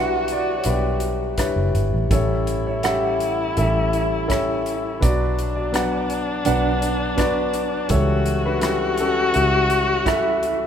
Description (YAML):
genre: acoustic folk-pop ballad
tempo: 83 BPM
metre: 4/4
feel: straight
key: unclear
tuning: A4 = 440 Hz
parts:
  - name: warm concert grand piano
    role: melody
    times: 0.0-10.7 s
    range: A1 to F#5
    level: -22 LUFS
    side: left 1 dB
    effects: none
  - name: warm viola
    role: second line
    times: 0.0-10.7 s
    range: D4 to F#4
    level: -25 LUFS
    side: left 3 dB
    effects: none
  - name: mellow electric guitar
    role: arpeggios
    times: 0.0-10.7 s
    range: D4 to F#5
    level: -28 LUFS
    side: right 7 dB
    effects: tremolo
  - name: vintage muted fingered electric bass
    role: bass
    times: 0.0-10.7 s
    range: F#1 to C#2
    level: -24 LUFS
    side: right 1 dB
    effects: none
  - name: natural country drum kit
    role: drums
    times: 0.3-10.6 s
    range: hi-hat, kick drum, rim click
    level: -26 LUFS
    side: right 1 dB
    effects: none
room: moderate church reverb, RT60 3.2 s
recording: recorded in a church or concert hall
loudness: -18 LUFS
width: side -8 dB against mid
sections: 0.0-10.7 A section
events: none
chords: 0.0 Em7/B; 2.1 A7; 5.0 Bm; 7.9 A7/C#